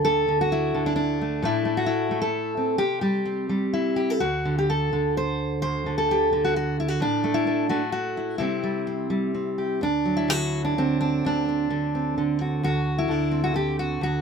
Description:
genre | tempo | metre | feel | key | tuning
folk, solo fingerstyle acoustic guitar | 129 BPM | 3/4 | rubato | D mixolydian | A4 = 440 Hz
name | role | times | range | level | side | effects
fingerpicked steel-string acoustic guitar | solo | 0.0-14.2 s | D2 to C5 | -22 LUFS | equal | none
room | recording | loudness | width
moderate studio reverb, RT60 0.5 s | band playing live in one room | -22 LUFS | side -6 dB against mid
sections
0.0-9.8 A section; 9.8-14.2 B section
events
none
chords
0.0 D; 1.4 Am; 2.8 C; 4.2 N.C.; 7.0 A5; 8.4 C; 9.8 D7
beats
| 0.05 0.51 0.97 | 1.42 1.87 2.33 | 2.79 3.26 3.73 | 4.21 4.68 5.15 | 5.62 6.09 6.54 | 7.00 7.45 7.92 | 8.39 8.86 9.34 | 9.82 10.29 10.77 | 11.24 11.71 12.17 | 12.63 13.09 13.54 | 14.01

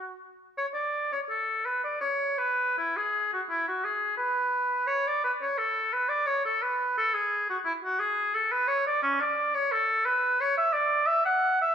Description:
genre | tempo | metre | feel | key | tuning
classical, baroque-style fantasia for unaccompanied oboe | 87 BPM | 3/4 | rubato | unclear | A4 = 442 Hz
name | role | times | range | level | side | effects
warm oboe | solo | 0.0-11.7 s | C#4 to F#5 | -25 LUFS | equal | none
room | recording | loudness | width
wet recital hall reverb, RT60 1.7 s | minimal, uncompressed stereo recording | -25 LUFS | side -8 dB against mid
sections
0.6-11.7 A section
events
none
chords
none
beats
| 0.57 1.30 2.01 | 2.76 3.49 4.17 | 4.87 5.56 6.26 | 6.95 7.64 8.34 | 9.02 9.71 10.40 | 11.08

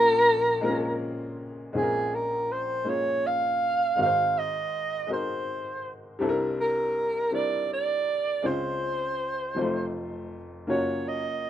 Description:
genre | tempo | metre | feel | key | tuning
gospel | 54 BPM (dotted quarters) | 6/8 | straight | Bb minor | A4 = 440 Hz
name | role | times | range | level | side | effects
breathy soprano saxophone | melody | 0.0-11.5 s | Ab4 to F5 | -25 LUFS | right 1 dB | none
warm upright piano | accompaniment | 0.0-11.5 s | F1 to Db5 | -30 LUFS | left 2 dB | none
room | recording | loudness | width
small room reverb | rough home demo mix | -24 LUFS | side -11 dB against mid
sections
0.0-1.7 A section; 1.7-11.5 B section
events
none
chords
0.0 Bbm9; 4.0 Ab7; 6.2 C9; 8.4 Dbmaj7; 9.6 F7; 10.7 Gbmaj7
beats
0.62 | 1.74 2.85 | 3.97 5.09 | 6.21 7.33 | 8.45 9.57 | 10.68

